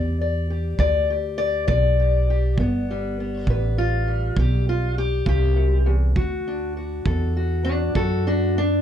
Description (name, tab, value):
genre	acoustic country blues, solo or duo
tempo	67 BPM (dotted quarters)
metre	12/8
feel	straight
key	unclear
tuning	A4 = 440 Hz
part	fingerpicked steel-string acoustic guitar	melody	0.0-8.8 s	D2 to D5	-24 LUFS	left 3 dB	none
part	upright bass	bass	0.0-8.8 s	G1 to F#2	-22 LUFS	equal	none
part	kick drum	drums	0.8-8.1 s	none	-25 LUFS	right 2 dB	none
room	little or no reverb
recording	dark, warm production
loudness	-19 LUFS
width	side -9 dB against mid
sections	0.0-8.8 A section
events	steel-string acoustic guitar solo 0.0-8.8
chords	0.0 G; 6.2 D